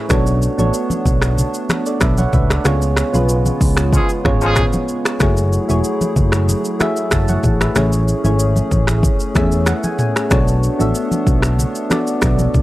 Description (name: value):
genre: afrobeats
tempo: 94 BPM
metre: 4/4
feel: straight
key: unclear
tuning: A4 = 440 Hz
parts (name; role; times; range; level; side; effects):
- soft electric-piano-like synth keys; accompaniment; 0.0-12.6 s; A3 to A5; -20 LUFS; equal; chorus
- hollow soft pad; sustained chords; 0.0-12.6 s; C#3 to G#4; -26 LUFS; right 1 dB; chorus
- fingered electric bass; bass; 0.1-12.6 s; E1 to E2; -17 LUFS; equal; none
- afro-pop drum kit; drums; 0.1-12.6 s; finger snaps, hi-hat, kick drum, rim click, shaker, toms; -18 LUFS; equal; none
- congas; percussion; 0.1-12.5 s; none; -23 LUFS; equal; none
- clear horn section; second line; 3.9-4.6 s; E#3 to G#4; -20 LUFS; left 1 dB; none
room: little or no reverb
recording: dry, gritty hardware recording, lossy compression artefacts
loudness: -14 LUFS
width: side -16 dB against mid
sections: 0.0-12.6 A section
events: band accent 2.7-5.2; synth keys fill 9.0-10.3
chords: 0.1 Bm9; 2.7 C#7; 5.2 F#m9; 7.8 Amaj7; 10.3 Bm9